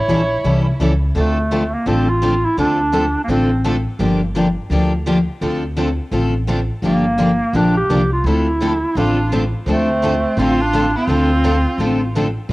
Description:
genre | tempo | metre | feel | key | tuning
acoustic string swing (jazz manouche) | 169 BPM | 4/4 | swing 61% on 8ths | D minor | A4 = 440 Hz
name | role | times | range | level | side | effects
mellow clarinet | melody | 0.0-3.6, 6.9-12.1 s | A3 to C#5 | -19 LUFS | right 1 dB | none
clear violin | second line | 0.0-0.8, 8.9-12.1 s | C4 to F4 | -24 LUFS | right 2 dB | none
upright bass | bass | 0.0-12.5 s | G1 to D2 | -20 LUFS | equal | none
picked steel-string acoustic guitar | accompaniment | 0.1-12.5 s | D3 to A4 | -20 LUFS | left 2 dB | none
picked steel-string acoustic guitar | accompaniment | 0.1-12.3 s | D3 to A4 | -25 LUFS | right 4 dB | none
room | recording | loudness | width
light reverb | home recording on cassette | -14 LUFS | side -19 dB against mid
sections
0.0-1.2 A section; 1.2-12.5 A section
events
none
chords
0.0 A7#9; 1.2 Dm7; 4.0 Gm7; 5.4 Dm7; 6.8 Gm7; 8.2 Dm7

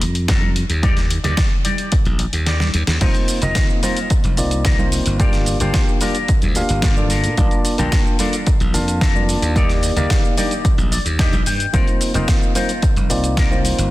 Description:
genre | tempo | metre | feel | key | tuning
nu-disco, nu disco | 110 BPM | 4/4 | straight | F mixolydian | A4 = 444 Hz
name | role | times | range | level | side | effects
electric guitar with an envelope filter | riff | 0.0-13.8 s | D4 to G5 | -26 LUFS | left 4 dB | lush chorus, slapback echo
glassy slap bass | bass | 0.0-13.9 s | F1 to Bb2 | -20 LUFS | equal | sidechain pumping
dusty soul sampler-style drum kit | drums | 0.0-13.9 s | crash cymbal, hi-hat, shaker, snare drum | -24 LUFS | equal | studio reverb
electronic kick drum | drums | 0.3-13.5 s | none | -18 LUFS | equal | overdrive, studio reverb
congas | percussion | 0.4-13.6 s | none | -29 LUFS | right 2 dB | none
tine electric piano | accompaniment | 3.0-13.9 s | Bb3 to A5 | -22 LUFS | equal | sidechain pumping, slapback echo
room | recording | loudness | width
light reverb, digital ambience | dense, heavily limited modern master | -15 LUFS | side -17 dB against mid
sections
0.0-13.9 A section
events
kick drops out 2.5-3.0; drum fill 2.5-3.0; clean electric guitar fill 10.7-11.7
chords
0.0 Bbmaj7; 0.8 Ebmaj7; 3.0 F7sus4; 5.2 Gm7; 7.1 Bbmaj7; 9.6 Ebmaj7; 11.7 F7sus4

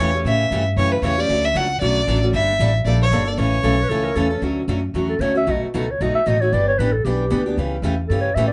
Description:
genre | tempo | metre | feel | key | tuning
acoustic string swing (jazz manouche) | 230 BPM | 4/4 | swing 55% on 8ths | D major | A4 = 440 Hz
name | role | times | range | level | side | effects
warm violin | melody | 0.0-4.1 s | B4 to F#5 | -23 LUFS | equal | none
picked steel-string acoustic guitar | accompaniment | 0.0-8.5 s | B2 to A4 | -25 LUFS | equal | none
upright bass | bass | 0.0-8.5 s | G1 to A2 | -24 LUFS | equal | none
breathy clarinet | second line | 3.6-8.5 s | F#4 to E5 | -24 LUFS | equal | none
room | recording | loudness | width
light reverb | nothing above 10.7 kHz | -19 LUFS | mono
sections
0.0-4.4 A section; 4.4-8.5 B section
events
clarinet solo 4.4-8.5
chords
0.0 A7; 1.3 Dmaj7; 2.3 Gmadd9; 3.4 A; 4.4 Dmaj7; 5.5 B7; 6.5 Em7; 7.6 A7

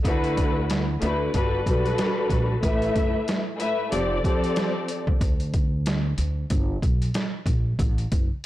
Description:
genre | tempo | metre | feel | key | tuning
hip hop, boom-bap hip-hop | 93 BPM | 4/4 | swing 59% on 16ths | unclear | A4 = 439 Hz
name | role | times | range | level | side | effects
warm studio string section | accompaniment | 0.0-5.0 s | G2 to E5 | -24 LUFS | left 1 dB | cassette tape, high-pass filter, low-pass filter
upright bass | bass | 0.0-8.3 s | F1 to Eb2 | -26 LUFS | equal | tube saturation
trip hop sampler-style drum kit | drums | 0.0-8.3 s | hi-hat, kick drum, snare drum | -25 LUFS | equal | none
room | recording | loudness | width
light reverb, studio ambience | blown-out, overdriven recording, overdrive | -22 LUFS | side -15 dB against mid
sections
0.0-8.5 A section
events
none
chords
0.0 D6; 1.3 Gmaj7; 2.6 Asus2; 3.9 F6; 5.2 N.C.; 6.5 G; 7.8 F#m

